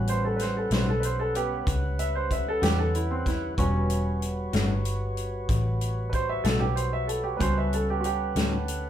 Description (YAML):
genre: slow blues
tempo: 63 BPM (dotted quarters)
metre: 12/8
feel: straight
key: A mixolydian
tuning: A4 = 439 Hz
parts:
  - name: clear baby grand piano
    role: accompaniment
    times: 0.0-8.9 s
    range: G3 to E5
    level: -28 LUFS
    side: right 2 dB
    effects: none
  - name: mellow tonewheel organ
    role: sustained chords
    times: 0.0-8.9 s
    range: G3 to F#5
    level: -34 LUFS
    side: equal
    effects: slow rotary speaker
  - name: vintage muted fingered electric bass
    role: bass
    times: 0.0-8.9 s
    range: E1 to E2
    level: -28 LUFS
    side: equal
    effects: none
  - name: natural country drum kit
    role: drums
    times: 0.1-8.8 s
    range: hi-hat, kick drum, snare drum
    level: -30 LUFS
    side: left 1 dB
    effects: none
  - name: clean electric guitar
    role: accompaniment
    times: 0.7-8.6 s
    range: A2 to F#4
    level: -31 LUFS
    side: left 3 dB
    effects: harmonic tremolo
room: moderate studio ambience, RT60 0.5 s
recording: band playing live in one room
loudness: -24 LUFS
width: side -10 dB against mid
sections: 0.0-8.9 A section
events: grand piano solo 0.0-8.9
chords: 0.0 A13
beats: 0.71 1.67 2.63 | 3.58 4.54 5.50 6.45 | 7.41 8.37